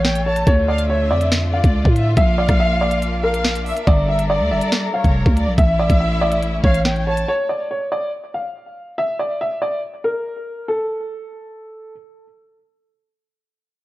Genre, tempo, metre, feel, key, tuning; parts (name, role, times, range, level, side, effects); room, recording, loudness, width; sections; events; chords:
hip hop, drill; 141 BPM; 4/4; half-time; A4 = 441 Hz
dark baby grand piano; melody; 0.0-11.9 s; A4 to F5; -22 LUFS; equal; low-pass filter, digital delay
warm symphonic violin section; second line; 0.0-7.3 s; C#5 to A5; -25 LUFS; equal; digital delay
rich studio string section; sustained chords; 0.0-7.3 s; D3 to Bb4; -28 LUFS; left 1 dB
growling 808-style bass; bass; 0.0-7.3 s; F1 to A2; -19 LUFS; equal
drill drum kit; drums; 0.0-7.3 s; hi-hat, kick drum, rim click, snare drum; -17 LUFS; equal
light reverb, studio reverb; worn, warbling old tape, cassette tape, warbly pitch drift, low-pass filter; -16 LUFS; side -17 dB against mid
0.0-7.3 A section; 7.3-10.7 B section; 10.7-13.8 C section
filter sweep 7.3-10.7
0.5 Dmadd9; 2.2 Bb; 3.9 Gmadd9; 5.6 A; 7.3 N.C.